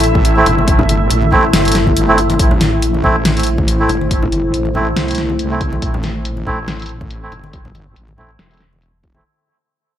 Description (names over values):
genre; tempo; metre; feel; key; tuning
deep dubstep; 140 BPM; 4/4; swing 54% on 16ths, half-time; A minor; A4 = 442 Hz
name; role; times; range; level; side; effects
deep dark ambient pad; sustained chords; 0.0-9.2 s; A3 to E5; -18 LUFS; equal; chorus, built-in reverb
wobble bass; bass; 0.0-9.2 s; E1 to C2; -18 LUFS; equal; chorus
deep house drum kit; drums; 0.0-9.1 s; hi-hat, snare drum; -19 LUFS; left 1 dB; low-pass filter on hats, low-pass filter on snare, low-pass filter on room
electronic kick drum; drums; 0.2-9.1 s; none; -17 LUFS; equal; none
congas; percussion; 0.2-9.2 s; none; -22 LUFS; left 2 dB; dub echo
melodica; stabs; 0.4-9.2 s; A3 to E4; -18 LUFS; right 2 dB; low-pass filter, dub echo
room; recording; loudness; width
moderate plate reverb, RT60 2.2 s; dreamy mix soaked in reverb; -12 LUFS; side -11 dB against mid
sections
0.0-2.4 A section; 2.4-9.3 B section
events
drop 0.0-2.4; kick drops out 2.0-2.4; fade-out 2.4-9.3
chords
0.0 Am